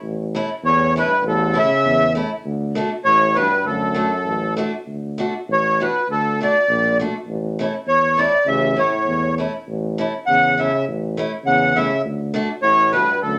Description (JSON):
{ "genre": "alpine folk, alpine dance band", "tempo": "100 BPM", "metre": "2/4", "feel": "rubato", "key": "D major", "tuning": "A4 = 435 Hz", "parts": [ { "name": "warm tuba", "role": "bass", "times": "0.0-13.4 s", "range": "A1 to E2", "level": "-27 LUFS", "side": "equal", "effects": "none" }, { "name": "picked acoustic archtop guitar", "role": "accompaniment", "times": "0.3-13.1 s", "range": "A3 to F#4", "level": "-28 LUFS", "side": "equal", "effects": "none" }, { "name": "accordion", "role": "melody", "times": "0.7-13.4 s", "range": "A4 to F#5", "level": "-19 LUFS", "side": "equal", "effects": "light tremolo tuning" }, { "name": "mellow euphonium", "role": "second line", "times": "0.7-4.6, 8.5-13.4 s", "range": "E2 to C#3", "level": "-27 LUFS", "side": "equal", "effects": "none" } ], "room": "moderate studio reverb, RT60 0.8 s", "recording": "none", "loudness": "-19 LUFS", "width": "mono", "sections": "0.0-4.9 A section; 4.9-13.4 A section", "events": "none", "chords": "0.0 A; 2.4 D; 7.3 A; 12.0 D" }